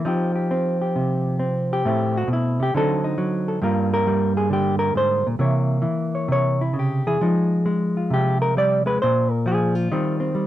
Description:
solo jazz; 134 BPM; 4/4; swing 67% on 8ths, rubato; A4 = 440 Hz
hollow-body jazz guitar; solo; 0.0-10.5 s; G2 to D5; -19 LUFS; equal
light reverb; minimal, uncompressed stereo recording; -19 LUFS; side -13 dB against mid
0.0-10.5 A section
hollow-body jazz guitar solo 0.0-10.5
0.0 F7sus2; 1.8 Amadd9; 2.7 D7b9; 3.6 Gm7; 5.4 C7b9; 7.2 Fm9; 9.0 Bb5; 9.9 Eb69

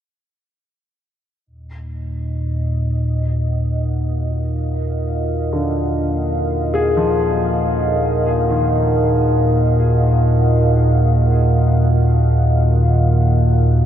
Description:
dark ambient drone; free time; Eb harmonic minor; A4 = 440 Hz
deep dark ambient pad; sustained chords; 2.2-13.9 s; Bb4 to Gb5; -21 LUFS; equal; chorus, built-in reverb
deep rumbling drone; drone; 1.7-13.9 s; Eb2 to Bb2; -16 LUFS; equal; built-in reverb, lush chorus
clear concert grand piano; arpeggios; 5.5-13.9 s; D3 to Ab4; -23 LUFS; left 2 dB; diffuse ambient delay
wet huge ambient reverb, RT60 7.5 s; dark, warm production; -15 LUFS; side -10 dB against mid
1.5-13.9 A section
1.5 Ebm

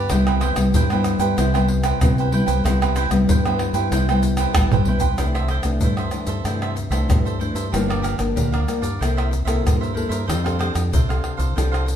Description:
samba and choro; 94 BPM; 4/4; straight; C major; A4 = 440 Hz
cavaquinho; accompaniment; 0.0-11.9 s; D4 to G5; -27 LUFS; right 7 dB
nylon-string guitar; accompaniment; 0.0-12.0 s; G2 to A4; -23 LUFS; left 2 dB
deep dub fingered electric bass; bass; 0.0-12.0 s; G1 to C3; -22 LUFS; equal
egg shaker, surdo, pandeiro and tamborim; percussion; 0.1-12.0 s; -23 LUFS; equal
moderate studio reverb, RT60 0.7 s; band playing live in one room; -18 LUFS; side -9 dB against mid
0.0-5.2 A section; 5.2-12.0 B section
drum fill 4.6-5.2
0.1 Cmaj7; 5.2 C69; 7.7 Gm7; 9.0 C6; 10.3 F69

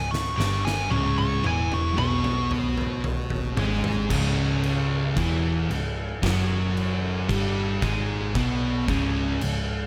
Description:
stoner and doom metal; 56 BPM; 4/4; straight; C# minor; A4 = 438 Hz
fuzz lead guitar; melody; 0.0-2.5 s; G#5 to C#6; -32 LUFS; equal; wah, distortion, digital delay
biting overdriven guitar; riff; 0.0-9.8 s; C#2 to B3; -34 LUFS; equal
thick fuzz guitar; riff; 0.0-9.8 s; C#2 to B3; -32 LUFS; equal; distortion
thick fuzz guitar; riff; 0.0-9.8 s; C#2 to B3; -33 LUFS; equal; distortion
hollow-body short-scale picked electric bass; bass; 0.0-9.9 s; C#1 to B1; -30 LUFS; equal; overdrive
oversized low-tuned drum kit; drums; 0.1-9.7 s; crash cymbal, kick drum, snare drum, toms; -32 LUFS; equal
small room ambience; -25 LUFS; mono
0.0-4.1 A section; 4.1-9.9 B section
drum fill 0.0-4.1; lead electric guitar solo 0.0-4.1
0.0 C#m

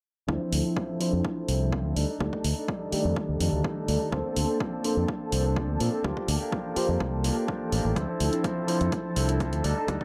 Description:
filtered disco house; 125 BPM; 4/4; straight; D minor; A4 = 440 Hz
bell-like tine electric piano; accompaniment; 0.3-10.0 s; Eb3 to D5; -32 LUFS; equal; phaser, sidechain pumping, low-pass filter
string machine, full ensemble; sustained chords; 0.3-10.0 s; A4 to A5; -38 LUFS; equal; ensemble chorus, sidechain pumping, low-pass filter
clean electric guitar; riff; 0.3-10.0 s; F3 to A4; -37 LUFS; equal; vintage 12-bit sampler grit, sidechain pumping, low-pass filter
fingered electric bass; bass; 0.3-10.0 s; A1 to Bb2; -30 LUFS; equal; sidechain pumping, low-pass filter
electronic kick drum; drums; 0.3-10.0 s; -35 LUFS; equal; overdrive, high-pass filter on kick, high-pass filter on room
electronic hi-hat; drums; 0.5-10.0 s; -37 LUFS; equal; overdrive, sidechain pumping on hats
light reverb, digital ambience; -28 LUFS; mono
0.3-10.0 A section
filter sweep 0.3-10.0
0.3 Dm9; 2.0 F13/D (rootless); 4.1 Bbmaj9/D; 6.0 C7sus4/D; 8.0 Dm9

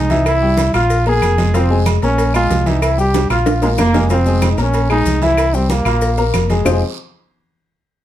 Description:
latin, salsa; 188 BPM; 4/4; straight; F minor; A4 = 440 Hz
bright trombone; melody; 0.0-6.8 s; Ab3 to Ab4; -18 LUFS; equal
warm grand piano; accompaniment; 0.0-6.8 s; Fb3 to F6; -19 LUFS; left 3 dB
fingered electric bass; bass; 0.0-6.8 s; F1 to C2; -17 LUFS; equal
agogo bells and timbales; percussion; 0.1-6.7 s; -26 LUFS; right 12 dB
congas; percussion; 0.1-6.7 s; -24 LUFS; right 1 dB
cowbell and bongos; percussion; 0.1-6.7 s; -25 LUFS; left 3 dB
guiro; percussion; 0.1-6.7 s; -33 LUFS; right 8 dB
maracas; percussion; 0.1-6.7 s; -34 LUFS; left 6 dB
claves; percussion; 0.3-6.7 s; -29 LUFS; left 6 dB
brilliant trombone section; second line; 3.6-4.1 s; Ab3 to Bb3; -18 LUFS; right 2 dB
light reverb; dark, warm production; -12 LUFS; side -12 dB against mid
0.0-4.1 A section; 4.1-6.7 B section; 6.7-7.9 C section
drum fill 3.1-4.1
0.3 C7; 0.9 Bb5; 2.8 C7; 3.5 Bb5; 4.7 Bbm9b5; 5.4 C7; 6.0 Bb5; 6.7 Fm7

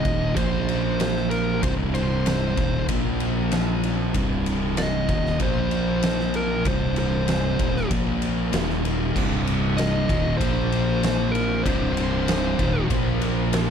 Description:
stoner and doom metal; 96 BPM; 4/4; straight; C minor; A4 = 440 Hz
fuzz lead guitar; melody; 0.0-12.8 s; Bb4 to Eb5; -29 LUFS; equal; distortion, ping-pong delay
thick fuzz guitar; riff; 0.0-13.7 s; C2 to Bb3; -27 LUFS; left 10 dB; distortion
thick fuzz guitar; riff; 0.0-13.7 s; C2 to Bb3; -28 LUFS; right 12 dB; distortion
oversized low-tuned drum kit; drums; 0.0-13.7 s; crash cymbal, kick drum, ride cymbal, snare drum; -26 LUFS; equal
fuzz fingered electric bass; bass; 0.1-13.7 s; C1 to Bb1; -27 LUFS; equal; overdrive
distorted electric guitar; riff; 9.2-13.7 s; C2 to Bb3; -31 LUFS; left 1 dB; overdrive
little or no reverb; dark, warm production; -20 LUFS; side -7 dB against mid
0.0-13.7 A section
0.4 Bb5; 1.6 Cm; 2.9 Bb5; 4.1 Cm; 5.4 Bb5; 6.7 Cm; 7.9 Bb5; 8.5 Eb5; 9.2 Cm; 10.4 Bb5; 11.7 Cm; 12.9 Bb5

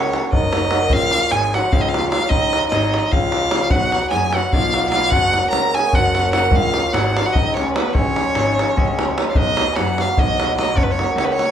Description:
balkan folk, Balkan wedding band; 298 BPM (eighths); 7/8; straight; Db mixolydian; A4 = 440 Hz
rich violin; melody; 0.0-11.5 s; Cb5 to Bb5; -20 LUFS; right 1 dB
mellow accordion; second line; 0.0-9.2 s; Cb4 to Bb4; -25 LUFS; left 1 dB
cimbalom; accompaniment; 0.0-11.5 s; F3 to Gb4; -24 LUFS; right 2 dB
clear grand piano; bass; 0.0-11.4 s; Gb1 to Gb2; -24 LUFS; left 2 dB
davul; percussion; 0.0-11.5 s; -20 LUFS; equal
wet studio ambience, RT60 0.5 s; band playing live in one room; -15 LUFS; side -9 dB against mid
0.0-9.3 A section; 9.3-11.5 A section
0.0 Gb; 0.9 Db; 3.7 Cb; 5.1 Gb; 6.5 Db; 9.3 Cb; 10.8 Gb

